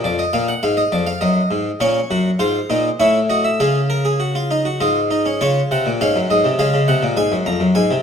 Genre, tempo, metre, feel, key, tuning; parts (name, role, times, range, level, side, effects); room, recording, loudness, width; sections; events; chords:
classical, baroque-style 3-part fugue for harpsichord; 102 BPM; 3/4; straight; Db major; A4 = 440 Hz
harpsichord; solo; 0.0-8.0 s; F2 to Bb5; -15 LUFS; equal
wet recital hall reverb, RT60 1.3 s; close, detailed microphones; -15 LUFS; side -7 dB against mid
0.0-5.4 A section; 5.4-8.0 B section
0.1 Bb7/F; 1.2 Ebm/Gb; 1.8 Gb; 3.0 A; 3.6 Absus4/Db; 4.8 Ab5; 5.4 Db; 7.2 Ab7